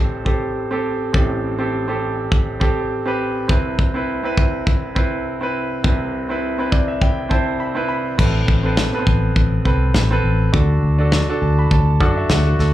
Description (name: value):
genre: piano-driven pop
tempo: 102 BPM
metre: 4/4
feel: swing 56% on 16ths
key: unclear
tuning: A4 = 440 Hz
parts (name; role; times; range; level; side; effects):
- clear concert grand piano; accompaniment; 0.0-12.7 s; A1 to B5; -20 LUFS; right 1 dB; slapback echo
- modern studio drum kit; drums; 0.3-12.7 s; crash cymbal, kick drum, snare drum; -18 LUFS; equal; none
- vintage muted fingered electric bass; bass; 8.2-12.7 s; A1 to F#2; -16 LUFS; left 1 dB; none
room: little or no reverb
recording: live gig heard through the venue's PA, club reverb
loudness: -16 LUFS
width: side -14 dB against mid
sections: 0.0-8.2 A section; 8.2-12.7 B section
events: grand piano fill 6.4-8.2, 11.1-12.7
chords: 0.0 Am7; 3.5 Cmaj7; 8.2 Amadd9; 10.5 D